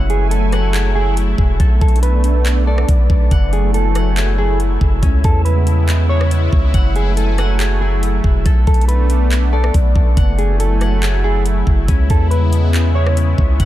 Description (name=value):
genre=hip hop, atmospheric cloud-rap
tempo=140 BPM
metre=4/4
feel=half-time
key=F# minor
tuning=A4 = 439 Hz
part: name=sweeping resonant pad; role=sustained chords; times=0.0-13.7 s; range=C#3 to G#5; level=-22 LUFS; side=equal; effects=chorus, sidechain pumping
part: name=Celtic harp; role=arpeggios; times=0.0-13.7 s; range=C#4 to F#5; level=-28 LUFS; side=left 6 dB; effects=low-pass filter, ping-pong delay
part: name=long sustained 808-style bass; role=bass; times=0.0-13.7 s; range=E1 to E2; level=-14 LUFS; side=equal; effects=none
part: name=wind-like tuned noise texture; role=texture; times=0.0-13.7 s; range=A3 to G#5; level=-31 LUFS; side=right 2 dB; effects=built-in reverb
part: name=mellow electric guitar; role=melody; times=0.1-13.2 s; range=G#4 to C#5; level=-24 LUFS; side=right 1 dB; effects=phaser, low-pass filter, ping-pong delay
part: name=trap drum kit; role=drums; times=0.1-13.7 s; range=handclaps, hi-hat, kick drum, rim click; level=-17 LUFS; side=equal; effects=none
room=little or no reverb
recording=none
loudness=-12 LUFS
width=side -14 dB against mid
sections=0.0-10.2 A section; 10.2-13.7 A section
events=none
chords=0.0 F#m9; 1.6 Bm7; 3.3 F#m9; 5.0 C#m7; 6.7 F#m9; 8.5 Bm7; 10.2 F#m9; 11.9 C#m7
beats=0.31 0.74 1.17 | 1.60 2.03 2.46 2.88 | 3.31 3.74 4.17 4.60 | 5.03 5.46 5.88 6.31 | 6.74 7.17 7.60 8.03 | 8.46 8.88 9.31 9.74 | 10.17 10.60 11.03 11.46 | 11.88 12.31 12.74 13.17 | 13.60